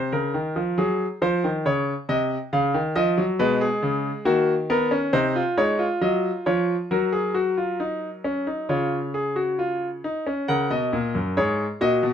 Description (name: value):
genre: classical, baroque-style 3-part fugue for grand piano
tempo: 68 BPM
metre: 4/4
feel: straight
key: F# major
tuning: A4 = 442 Hz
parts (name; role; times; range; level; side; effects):
- bright grand piano; solo; 0.0-12.1 s; F#2 to F#5; -21 LUFS; left 1 dB; none
room: moderate studio reverb, RT60 0.8 s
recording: none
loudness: -21 LUFS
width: side -8 dB against mid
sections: 0.0-10.5 A section; 10.5-12.1 B section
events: none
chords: 0.0 G#/B#; 1.6 C#; 3.4 G#m7/B; 5.1 Cdim; 6.9 F#; 8.7 C#; 10.5 F#